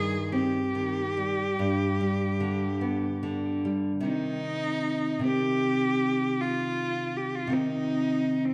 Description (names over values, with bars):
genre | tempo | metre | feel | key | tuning
romantic duo for cello and classical guitar | 46-56 BPM (dotted quarters) | 12/8 | rubato | C minor | A4 = 440 Hz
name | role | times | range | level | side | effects
rich cello | melody | 0.0-8.5 s | C4 to Ab4 | -32 LUFS | equal | none
nylon-string guitar | accompaniment | 0.0-8.5 s | G2 to C4 | -30 LUFS | equal | none
room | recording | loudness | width
wet recital hall reverb, RT60 1.6 s | none | -28 LUFS | mono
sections
0.0-4.1 A section; 4.1-8.5 B section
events
none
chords
0.0 Cm/G; 1.6 G; 4.1 Cm